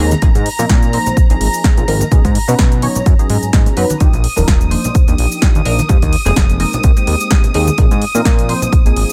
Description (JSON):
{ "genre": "filtered disco house", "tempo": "127 BPM", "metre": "4/4", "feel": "swing 55% on 16ths", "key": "unclear", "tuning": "A4 = 440 Hz", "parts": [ { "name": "funky polysynth comp", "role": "accompaniment", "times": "0.0-9.1 s", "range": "F3 to C#5", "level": "-22 LUFS", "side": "equal", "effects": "chorus, phaser, sidechain pumping" }, { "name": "muted chamber violin section", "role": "sustained chords", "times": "0.0-9.1 s", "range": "Bb5 to Eb6", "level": "-25 LUFS", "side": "equal", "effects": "sidechain pumping" }, { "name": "fat analog bass", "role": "bass", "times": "0.0-9.0 s", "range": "Eb1 to B2", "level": "-18 LUFS", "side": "equal", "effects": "sidechain pumping" }, { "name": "punchy analog drum machine", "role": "drums", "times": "0.1-9.1 s", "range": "cabasa, hi-hat, snare drum", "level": "-23 LUFS", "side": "equal", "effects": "overdrive, studio reverb, sidechain pumping on hats, sidechain pumping on perc" }, { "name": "congas and maracas", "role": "percussion", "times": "0.1-9.1 s", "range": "none", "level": "-26 LUFS", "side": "equal", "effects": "none" }, { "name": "electronic kick drum", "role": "drums", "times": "0.2-8.8 s", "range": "none", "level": "-14 LUFS", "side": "equal", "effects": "studio reverb" } ], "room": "digital ambience", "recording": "none", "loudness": "-13 LUFS", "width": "mono", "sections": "0.0-9.1 A section", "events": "none", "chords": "0.2 Bb9sus4; 2.1 B69; 4.0 Ebmaj9; 5.9 Fm11; 7.8 Bb9sus4", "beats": "| 0.22 0.70 1.17 1.64 | 2.11 2.59 3.06 3.53 | 4.00 4.48 4.95 5.42 | 5.89 6.37 6.84 7.31 | 7.78 8.26 8.73" }